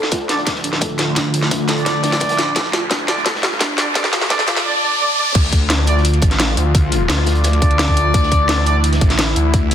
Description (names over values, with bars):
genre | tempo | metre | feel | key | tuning
dark technical drum and bass | 172 BPM | 4/4 | straight | D minor | A4 = 440 Hz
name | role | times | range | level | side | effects
sweeping resonant pad | sustained chords | 0.0-9.7 s | D3 to F4 | -22 LUFS | left 1 dB | chorus, sidechain pumping
snarling distorted saw bass | bass | 0.0-9.7 s | A1 to D2 | -19 LUFS | equal | distortion, tube saturation, high-pass filter
drum and bass drum kit | drums | 0.0-9.7 s | crash cymbal, hi-hat, rim click, snare drum | -19 LUFS | equal | high-pass filter on hats, high-pass filter on snare, high-pass filter on toms, high-pass filter on cymbals, high-pass filter on room
riser | sound effects | 0.0-5.4 s | none | -25 LUFS | right 1 dB | none
soft round pluck | arpeggios | 0.1-4.5 s | D4 to A4 | -26 LUFS | equal | lush chorus, cassette tape, sidechain pumping, dub echo
crunchy breakbeat drum kit | drums | 0.1-9.7 s | hi-hat, snare drum | -29 LUFS | equal | none
electronic kick drum | drums | 0.1-9.6 s | none | -17 LUFS | equal | high-pass filter on kick, high-pass filter on room
mellow brass ensemble | stabs | 0.3-8.8 s | D4 to D5 | -20 LUFS | right 1 dB | low-pass filter, dub echo
room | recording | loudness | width
moderate digital room reverb, RT60 1.0 s | dense, heavily limited modern master, high-pass filter | -14 LUFS | side -9 dB against mid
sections
0.0-5.4 A section; 5.4-9.7 B section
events
build-up 0.0-5.4; drum fill 0.0-4.7; riser 0.0-5.4; filter sweep on analog synth pad 0.0-5.4; filter sweep on synth pluck 0.0-5.4; filter sweep on brass ensemble 0.0-5.4; drop 5.4-9.7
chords
0.0 Dm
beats
0.12 0.47 0.82 | 1.17 1.51 1.86 2.21 | 2.56 2.91 3.26 3.61 | 3.96 4.30 4.65 5.00 | 5.35 5.70 6.05 6.40 | 6.75 7.09 7.44 7.79 | 8.14 8.49 8.84 9.19 | 9.54